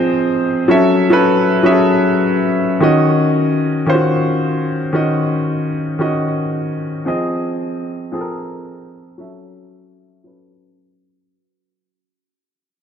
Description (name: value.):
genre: amapiano.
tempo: 113 BPM.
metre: 4/4.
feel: swing 58% on 16ths.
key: Eb dorian.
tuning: A4 = 440 Hz.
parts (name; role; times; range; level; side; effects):
warm grand piano; solo; 0.0-11.3 s; Eb3 to Fb5; -14 LUFS; left 1 dB; low-pass filter, digital delay.
room: moderate lush hall reverb, RT60 3.1 s.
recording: dark, warm production.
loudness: -14 LUFS.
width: side -8 dB against mid.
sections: 0.0-2.8 A section; 2.8-11.3 B section.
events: drop 0.0-2.8; fade-out 2.8-11.3; filter sweep on grand piano 2.8-11.3.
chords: 0.0 Fm7; 0.7 Gbm7; 2.8 Ebm7; 7.1 Fm7; 9.2 Gbm7.